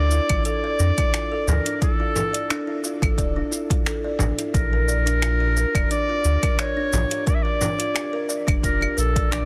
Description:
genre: organic downtempo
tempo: 88 BPM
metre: 4/4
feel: swing 54% on 16ths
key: D harmonic minor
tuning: A4 = 441 Hz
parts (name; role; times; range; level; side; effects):
- clear clarinet; melody; 0.0-9.5 s; A4 to E5; -28 LUFS; equal; digital delay, shimmer reverb
- kalimba; arpeggios; 0.0-9.5 s; D4 to D5; -30 LUFS; equal; delay, shimmer reverb
- warm sub bass; bass; 0.0-9.5 s; D1 to F2; -24 LUFS; equal; sidechain pumping
- deep house drum kit; drums; 0.1-9.5 s; claves, finger snaps, hi-hat, shaker; -30 LUFS; equal; overdrive, soft clipping on snare
- electronic kick drum; drums; 0.3-9.3 s; none; -26 LUFS; equal; overdrive
- frame drum; percussion; 1.5-7.8 s; none; -30 LUFS; equal; none
room: little or no reverb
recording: dense, heavily limited modern master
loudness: -22 LUFS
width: mono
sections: 0.0-9.5 A section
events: none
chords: 0.0 Dmadd9; 4.5 Bb6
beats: 0.45 1.14 | 1.82 2.50 3.18 3.86 | 4.54 5.23 5.91 6.59 | 7.27 7.95 8.63 9.32

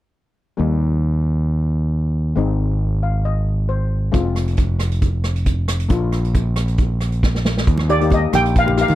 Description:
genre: calypso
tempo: 136 BPM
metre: 4/4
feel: swing 53% on 16ths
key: Eb major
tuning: A4 = 440 Hz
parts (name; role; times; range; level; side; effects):
- steel pan; accompaniment; 0.6-8.9 s; G3 to F5; -24 LUFS; left 7 dB; none
- growling fingered electric bass; bass; 0.6-8.9 s; F1 to Eb3; -18 LUFS; equal; overdrive
- unplugged drum kit; drums; 4.1-8.9 s; hi-hat, kick drum, rim click, snare drum; -20 LUFS; equal; none
- congas; percussion; 7.8-8.9 s; none; -27 LUFS; right 4 dB; none
- steel pan; melody; 7.9-8.9 s; D5 to G5; -18 LUFS; right 2 dB; none
room: little or no reverb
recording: none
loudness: -16 LUFS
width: side -14 dB against mid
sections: 0.6-7.7 A section; 7.7-8.9 B section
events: steel pan fill 2.8-4.1; drum fill 7.2-7.7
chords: 0.6 Eb; 2.4 Ab; 4.1 Fm; 5.9 Bb; 7.7 Ebadd9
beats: | 0.59 1.03 1.48 1.92 | 2.37 2.81 3.25 3.69 | 4.14 4.58 5.02 5.47 | 5.91 6.35 6.79 7.24 | 7.68 8.12 8.56

